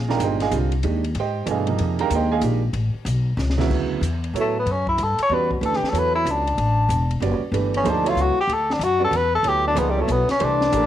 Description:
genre	modal jazz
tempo	188 BPM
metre	3/4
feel	swing 64% on 8ths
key	Bb mixolydian, D major from 3.7 s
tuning	A4 = 441 Hz
part	warm grand piano	accompaniment	0.0-10.9 s	D2 to Bb5	-24 LUFS	right 7 dB	cassette tape
part	upright bass	bass	0.0-10.9 s	E1 to A2	-23 LUFS	left 1 dB	none
part	compact cocktail drum kit	drums	0.1-10.8 s	crash cymbal, hi-hat, kick drum, ride cymbal, snare drum	-33 LUFS	left 2 dB	cassette tape
part	mellow tenor saxophone	melody	4.4-10.9 s	G3 to C#5	-20 LUFS	left 2 dB	cassette tape
room	light reverb, studio ambience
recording	home recording on cassette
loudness	-19 LUFS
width	side -11 dB against mid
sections	0.0-3.7 A section; 3.7-10.9 A section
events	drum fill 3.4-3.7; tenor saxophone solo 3.7-10.9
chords	0.0 Bb13sus4; 2.7 A; 3.7 Dmaj9; 7.5 Gmaj9

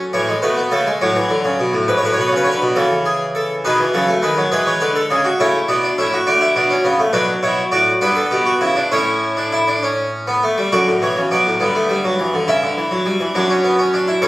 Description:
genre	classical, baroque-style 4-part fugue for harpsichord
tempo	68 BPM (dotted quarters)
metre	6/8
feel	straight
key	D major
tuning	A4 = 440 Hz
part	harpsichord	solo	0.0-14.3 s	F#2 to E5	-14 LUFS	equal	none
room	moderate stone room reverb, RT60 1.0 s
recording	recorded on a phone in the room, club reverb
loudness	-14 LUFS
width	side -17 dB against mid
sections	0.0-3.6 A section; 3.6-10.7 B section; 10.7-14.3 A section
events	none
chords	0.1 A; 1.0 Bm7/A; 1.9 Bm13/G#; 2.8 A/C#; 3.6 B7; 4.5 E; 5.4 A; 6.3 D; 7.1 Bm; 8.0 G; 8.9 A; 10.7 D/F#; 11.6 Em7/G; 12.5 Em13/G; 13.4 D/F#

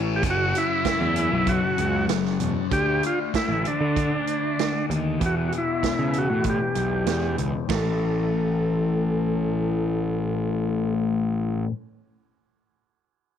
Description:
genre	psychedelic rock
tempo	97 BPM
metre	4/4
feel	straight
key	A mixolydian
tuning	A4 = 443 Hz
part	tonewheel organ	sustained chords	0.0-2.7 s	C#5 to A5	-39 LUFS	right 14 dB	slow rotary speaker, low-pass filter
part	thick fuzz guitar	riff	0.0-11.7 s	E2 to D4	-27 LUFS	left 9 dB	distortion, phaser, low-pass filter
part	fuzz picked electric bass	bass	0.0-11.6 s	E1 to D3	-26 LUFS	right 1 dB	overdrive
part	combo organ	melody	0.2-10.9 s	D4 to A4	-26 LUFS	right 1 dB	low-pass filter, slapback echo
part	vintage drum kit	drums	0.2-7.8 s	hi-hat, kick drum, ride cymbal, snare drum	-30 LUFS	right 6 dB	none
room	light reverb, studio reverb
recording	1960s-style stereo with parts hard left and right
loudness	-21 LUFS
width	side -9 dB against mid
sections	0.0-7.7 A section; 7.7-10.2 B section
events	filter sweep 0.0-7.7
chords	0.2 F#m; 2.7 D5; 5.2 Em; 7.7 A5

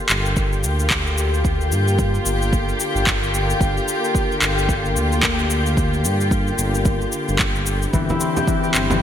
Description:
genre	organic downtempo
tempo	111 BPM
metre	4/4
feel	swing 59% on 16ths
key	G dorian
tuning	A4 = 440 Hz
part	dark studio string section	sustained chords	0.0-9.0 s	D3 to G4	-22 LUFS	left 1 dB	sidechain pumping
part	smooth synth bass	bass	0.1-9.0 s	G1 to G2	-22 LUFS	equal	sidechain pumping
part	electronic handclaps and shaker	drums	0.1-9.0 s	none	-23 LUFS	equal	gated reverb
part	electronic kick drum	drums	0.4-8.6 s	none	-22 LUFS	equal	none
part	concert harp	arpeggios	7.9-9.0 s	E3 to G4	-21 LUFS	left 4 dB	ping-pong delay
part	frame drum	percussion	8.1-9.0 s	none	-26 LUFS	right 3 dB	none
room	moderate lush hall reverb, RT60 2.6 s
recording	bright 1980s-style digital production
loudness	-17 LUFS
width	side -10 dB against mid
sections	0.0-9.0 A section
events	none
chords	0.0 Gm7; 7.9 Cadd9/G

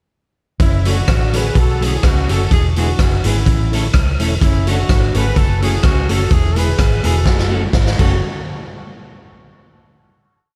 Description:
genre	ska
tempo	126 BPM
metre	4/4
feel	swing 54% on 8ths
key	F# minor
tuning	A4 = 440 Hz
part	warm horn section	melody	0.6-8.2 s	C#4 to B4	-26 LUFS	equal	dub echo
part	vintage muted fingered electric bass	bass	0.6-8.2 s	E1 to C#2	-19 LUFS	equal	none
part	raw garage drum kit	drums	0.6-8.1 s	crash cymbal, hi-hat, kick drum, rim click, snare drum	-19 LUFS	equal	none
part	clean electric guitar	accompaniment	0.9-8.1 s	F#3 to A4	-29 LUFS	equal	warbly pitch drift, dub echo
part	tonewheel organ	stabs	0.9-8.2 s	E4 to C#5	-31 LUFS	equal	overdrive, chorus vibrato, slow rotary speaker, dub echo
room	light reverb, studio ambience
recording	none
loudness	-15 LUFS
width	mono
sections	0.6-8.2 A section; 8.2-10.1 final hit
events	drum fill 7.3-8.2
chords	0.6 F#m; 2.5 E; 3.5 A; 4.4 F#m; 6.3 E; 7.3 F#m; 8.2 N.C.

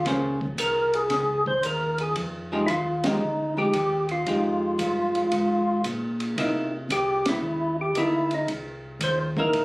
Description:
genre	soul jazz organ trio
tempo	114 BPM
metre	4/4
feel	swing 68% on 8ths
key	unclear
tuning	A4 = 441 Hz
part	percussive tonewheel organ	melody	0.0-9.6 s	Eb4 to C5	-24 LUFS	equal	overdrive, slow rotary speaker
part	mellow tonewheel organ	bass	0.0-9.6 s	Bb1 to C3	-31 LUFS	equal	none
part	archtop guitar, miked and amplified	accompaniment	0.1-9.6 s	F3 to C5	-26 LUFS	equal	none
part	open jazz drum kit	drums	0.1-9.6 s	hi-hat, kick drum, ride cymbal, snare drum	-32 LUFS	equal	none
room	moderate booth ambience, RT60 0.2 s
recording	recorded on a phone in the room, club reverb, compression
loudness	-22 LUFS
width	side -22 dB against mid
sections	0.0-9.6 A section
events	band accent 3.0, 7.2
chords	0.0 Bbm9; 2.2 Fm9; 6.4 C7#9

